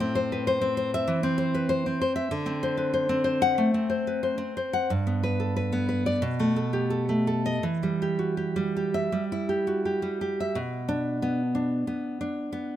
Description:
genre	romantic piece for solo classical guitar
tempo	80-99 BPM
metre	4/4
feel	rubato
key	E minor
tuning	A4 = 440 Hz
part	nylon-string guitar	solo	0.0-12.8 s	G2 to F#5	-24 LUFS	equal	none
room	light reverb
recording	close, detailed microphones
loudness	-24 LUFS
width	side -11 dB against mid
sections	0.0-10.6 A section; 10.6-12.8 B section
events	none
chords	0.0 Am; 2.3 D7; 4.9 G; 6.2 B7; 7.6 Em; 10.6 Bm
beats	0.47 1.09 1.70 | 2.32 2.95 3.60 4.26 | 4.92 5.57 6.23 6.90 | 7.62 8.37 9.11 9.84 | 10.56 11.22 11.87 12.51

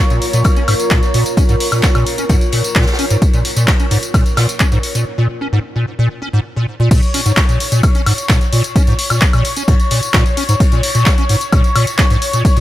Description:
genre	acid house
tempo	130 BPM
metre	4/4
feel	straight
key	Bb minor pentatonic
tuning	A4 = 443 Hz
part	lush unison pad	sustained chords	0.0-12.6 s	Db5	-23 LUFS	left 1 dB	chorus, sidechain pumping
part	deep dark ambient pad	texture	0.0-5.1 s	F4 to Bb5	-23 LUFS	equal	chorus, built-in reverb, sidechain pumping
part	acid bass, square	riff	0.1-12.6 s	Ab2 to Db4	-16 LUFS	equal	tube saturation, ensemble chorus, sidechain pumping, digital delay
part	punchy analog drum machine	drums	0.1-12.6 s	crash cymbal, handclaps, hi-hat, tambourine, woodblock	-19 LUFS	left 1 dB	overdrive
part	jazz brush drum kit	drums	0.2-12.6 s	hi-hat, ride cymbal, snare drum	-28 LUFS	left 2 dB	high-pass filter on cymbals, high-pass filter on hats, high-pass filter on snare, high-pass filter on room
part	electronic kick drum	drums	0.4-12.5 s	none	-13 LUFS	equal	overdrive
room	studio ambience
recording	none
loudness	-11 LUFS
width	side -14 dB against mid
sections	0.0-6.9 A section; 6.9-12.6 B section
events	break 5.1-6.9; drop 6.9-12.6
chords	0.0 Bbm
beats	0.45 0.91 | 1.37 1.83 2.29 2.76 | 3.22 3.68 4.14 4.60 | 5.06 5.53 5.99 6.45 | 6.91 7.37 7.83 8.29 | 8.76 9.22 9.68 10.14 | 10.60 11.06 11.53 11.99 | 12.45

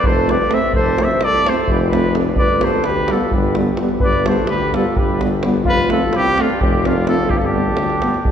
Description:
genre	balkan folk, Balkan brass band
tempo	256 BPM (eighths)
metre	7/8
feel	straight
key	G mixolydian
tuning	A4 = 440 Hz
part	warm trumpet	melody	0.0-8.3 s	F4 to E5	-19 LUFS	equal	none
part	mellow flugelhorn	second line	0.0-8.3 s	C4 to C5	-22 LUFS	left 1 dB	none
part	davul	percussion	0.0-8.3 s	none	-21 LUFS	equal	none
part	mellow tuba	bass	0.1-8.3 s	F1 to D2	-21 LUFS	left 1 dB	none
part	mellow euphonium	accompaniment	0.3-8.1 s	G3 to A3	-25 LUFS	right 4 dB	none
part	warm French horn	accompaniment	0.3-8.1 s	B3 to C4	-25 LUFS	left 3 dB	none
room	wet cathedral reverb, RT60 4.2 s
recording	recorded in a church or concert hall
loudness	-14 LUFS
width	side -8 dB against mid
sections	0.0-8.3 A section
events	none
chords	0.0 F; 2.4 G; 5.7 F; 7.3 G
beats	0.03 0.26 0.49 | 0.73 0.96 1.20 1.43 1.67 1.90 2.14 | 2.37 2.60 2.84 3.07 3.31 3.54 3.78 | 4.01 4.25 4.48 4.71 4.95 5.18 5.42 | 5.65 5.89 6.12 6.36 6.59 6.83 7.06 | 7.30 7.53 7.76 8.00 8.23

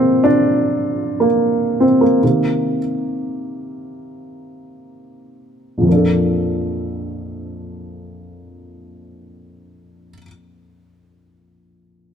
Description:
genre	pop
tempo	59-78 BPM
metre	4/4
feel	straight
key	Bb major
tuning	A4 = 440 Hz
part	dark upright piano	accompaniment	0.0-12.1 s	Bb1 to A4	-16 LUFS	equal	none
room	moderate plate reverb, RT60 2.3 s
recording	none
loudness	-14 LUFS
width	side -7 dB against mid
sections	0.0-5.9 A section; 5.9-9.9 B section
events	slowing down 0.0-5.9; upright piano solo 0.0-5.9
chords	0.0 Dm7; 2.2 Cm7; 5.9 Bbmaj7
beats	0.62 1.41 | 2.22 3.07 3.95 4.88 | 5.87 6.87 7.86 8.86

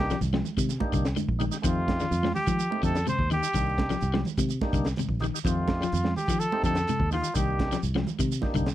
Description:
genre	afrobeat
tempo	126 BPM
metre	4/4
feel	straight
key	F mixolydian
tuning	A4 = 440 Hz
part	breathy trumpet	melody	0.0-7.8 s	F4 to C5	-30 LUFS	equal	none
part	percussive tonewheel organ	accompaniment	0.0-8.7 s	A3 to G4	-35 LUFS	right 1 dB	slow rotary speaker
part	fingered electric bass	bass	0.0-8.7 s	Bb1 to F3	-28 LUFS	equal	none
part	electric guitar at the edge of break-up	arpeggios	0.1-8.7 s	C3 to F3	-33 LUFS	left 8 dB	none
part	crunchy breakbeat drum kit	drums	0.1-8.7 s	hi-hat, kick drum, snare drum	-31 LUFS	equal	none
part	shekere	percussion	0.1-8.7 s	none	-39 LUFS	right 8 dB	none
part	congas	percussion	0.2-8.5 s	none	-33 LUFS	right 6 dB	none
room	light reverb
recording	dry, close 1970s-style studio recording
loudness	-24 LUFS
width	side -13 dB against mid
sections	0.0-8.7 A section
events	none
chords	0.0 Cm9; 1.6 F9; 3.5 Cm9; 5.5 F9; 7.4 Cm9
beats	0.21 0.69 1.16 | 1.64 2.12 2.59 3.07 | 3.55 4.02 4.50 4.98 | 5.45 5.93 6.41 6.88 | 7.36 7.83 8.31

